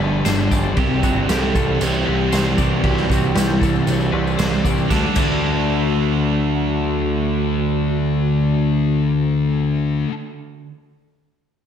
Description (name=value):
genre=rock, shoegaze and dream pop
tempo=116 BPM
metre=4/4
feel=straight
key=D mixolydian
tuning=A4 = 439 Hz
part: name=twelve-string electric guitar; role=arpeggios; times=0.0-5.8 s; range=D4 to D5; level=-29 LUFS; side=left 8 dB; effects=wide subtle chorus, analog delay
part: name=overdriven electric guitar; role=riff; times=0.0-10.1 s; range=G2 to A4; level=-23 LUFS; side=right 8 dB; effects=reverse reverb
part: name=raw garage guitar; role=riff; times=0.0-10.1 s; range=G2 to D4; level=-28 LUFS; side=left 1 dB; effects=overdrive
part: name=thick fuzz guitar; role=riff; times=0.0-10.1 s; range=G2 to D4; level=-23 LUFS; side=left 9 dB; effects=distortion, wide subtle chorus
part: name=growling picked electric bass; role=bass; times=0.0-10.0 s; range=G1 to D2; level=-22 LUFS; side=equal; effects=overdrive
part: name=raw garage drum kit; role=drums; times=0.2-5.3 s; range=crash cymbal, kick drum, snare drum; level=-22 LUFS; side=equal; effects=none
part: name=tambourine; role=percussion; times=0.3-5.3 s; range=none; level=-35 LUFS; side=right 12 dB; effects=none
part: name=soft octave-layered synth lead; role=melody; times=0.8-9.8 s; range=C4 to A4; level=-28 LUFS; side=left 1 dB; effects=chorus, phaser, analog delay
room=moderate lush hall reverb, RT60 1.6 s, studio reverb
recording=dreamy mix soaked in reverb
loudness=-16 LUFS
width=side -8 dB against mid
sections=0.0-4.9 A section; 4.9-9.0 B section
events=none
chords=0.0 G7; 0.8 Cmaj7; 4.9 D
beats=0.26 | 0.77 1.29 1.80 2.32 | 2.84 3.35 3.87 4.38 | 4.90 5.42 5.93 6.45 | 6.96 7.48 8.00 8.51